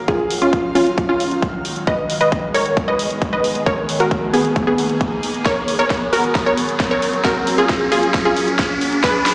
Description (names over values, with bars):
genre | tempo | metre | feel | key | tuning
uplifting trance | 134 BPM | 4/4 | straight | unclear | A4 = 440 Hz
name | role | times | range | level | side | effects
shimmering ambient pad | sustained chords | 0.0-9.3 s | Eb3 to F5 | -26 LUFS | equal | chorus, built-in reverb, phaser, sidechain pumping
riser | sound effects | 0.3-9.3 s | none | -24 LUFS | equal | none
wide unison pluck | melody | 0.1-9.3 s | Cb4 to Eb5 | -18 LUFS | equal | sidechain pumping, dub echo
warm baby grand piano | second line | 0.1-9.3 s | F4 to Eb5 | -25 LUFS | equal | none
big-room dance drum kit | drums | 0.1-9.3 s | hi-hat, snare drum, toms | -25 LUFS | equal | overdrive, high-pass filter on hats, small room ambience, high-pass filter on toms, high-pass filter on snare
electronic kick drum | drums | 0.1-9.1 s | none | -22 LUFS | equal | overdrive, small room ambience
room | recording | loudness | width
moderate lush hall reverb, RT60 2.5 s | played on a big sound system in a bare room, large studio reverb, small speaker sound | -15 LUFS | side -27 dB against mid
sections
0.0-9.3 A section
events
build-up 0.0-9.3; riser 0.3-9.3; drum fill 5.5-9.3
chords
0.0 Ebmadd9; 1.9 Abm; 5.5 Gbadd9